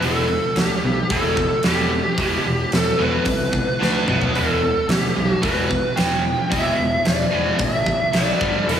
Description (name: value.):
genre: hard rock.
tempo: 111 BPM.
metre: 4/4.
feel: straight.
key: E minor.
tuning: A4 = 445 Hz.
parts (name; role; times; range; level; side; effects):
smooth overdriven lead guitar; melody; 0.0-8.8 s; G4 to G5; -22 LUFS; equal; slapback echo, tape echo.
cranked stack guitar; riff; 0.0-8.8 s; E2 to D4; -23 LUFS; equal; overdrive, slapback echo.
fuzz picked electric bass; bass; 0.0-8.8 s; E1 to D2; -25 LUFS; equal; overdrive.
huge arena drum kit; drums; 0.0-8.8 s; hi-hat, kick drum, snare drum, toms; -23 LUFS; right 1 dB; none.
room: moderate lush hall reverb, RT60 1.8 s, studio reverb.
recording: big arena sound, studio ambience.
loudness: -17 LUFS.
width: side -9 dB against mid.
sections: 0.0-8.8 A section.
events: drum fill 3.8-4.3.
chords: 0.0 Em; 3.8 D5; 4.1 B5; 4.3 Em; 8.1 B5; 8.4 G5.